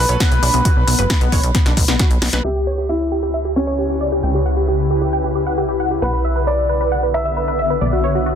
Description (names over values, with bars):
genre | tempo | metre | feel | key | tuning
uplifting trance | 134 BPM | 4/4 | straight | unclear | A4 = 440 Hz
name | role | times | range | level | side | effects
clear grand piano | second line | 0.0-8.4 s | C#4 to E5 | -22 LUFS | equal | tape echo
plucky analog bass | bass | 0.0-8.4 s | F#1 to C#2 | -21 LUFS | equal | sidechain pumping
analog pluck | arpeggios | 0.1-2.4 s | B3 to C#5 | -26 LUFS | left 4 dB | chorus, sidechain pumping, tape echo
punchy analog drum machine | drums | 0.1-2.4 s | hi-hat, snare drum | -21 LUFS | left 1 dB | low-pass filter on hats, low-pass filter on snare
electronic kick drum | drums | 0.2-2.1 s | none | -16 LUFS | equal | none
wide unison pluck | melody | 2.4-8.4 s | F#4 to G5 | -20 LUFS | equal | phaser, sidechain pumping, tape echo
shimmering ambient pad | sustained chords | 3.7-8.4 s | C#3 to B4 | -23 LUFS | left 1 dB | chorus, built-in reverb, sidechain pumping
downlifter | sound effects | 2.6-6.0 s | none | -40 LUFS | equal | none
room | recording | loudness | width
light reverb | dense, heavily limited modern master, low-pass filter | -15 LUFS | side -8 dB against mid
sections
0.0-2.4 A section; 2.4-8.4 B section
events
drum fill 1.5-2.4; filter sweep on synth pluck 2.4-8.4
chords
0.0 B5; 2.4 C#m7b5; 6.0 Bm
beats
0.20 | 0.65 1.10 1.55 2.00 | 2.44 2.89 3.34 3.79 | 4.23 4.68 5.13 5.58 | 6.03 6.47 6.92 7.37 | 7.82 8.26